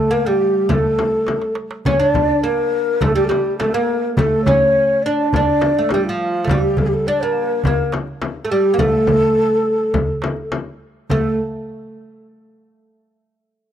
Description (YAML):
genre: Arabic maqam ensemble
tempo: 104 BPM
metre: 4/4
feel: straight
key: A maqam hijaz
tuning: A4 = 440 Hz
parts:
  - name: breathy mellow ney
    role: melody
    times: 0.0-11.4 s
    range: F4 to D5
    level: -17 LUFS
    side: left 1 dB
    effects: none
  - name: oud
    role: second line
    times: 0.0-11.4 s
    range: F3 to D4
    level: -21 LUFS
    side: right 2 dB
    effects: none
  - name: darbuka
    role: percussion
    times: 0.1-11.4 s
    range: none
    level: -24 LUFS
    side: right 3 dB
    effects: none
  - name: frame drum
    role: percussion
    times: 0.7-11.4 s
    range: none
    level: -22 LUFS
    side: left 2 dB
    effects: none
room: small room ambience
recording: dry, close 1970s-style studio recording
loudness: -15 LUFS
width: side -10 dB against mid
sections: 0.0-11.1 A section; 11.1-13.4 B section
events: drum fill 1.3-1.9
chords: none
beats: 0.12 0.70 1.28 | 1.86 2.44 3.02 3.60 | 4.17 4.75 5.33 5.91 | 6.49 7.07 7.64 8.22 | 8.80 9.37 9.95 10.53 | 11.11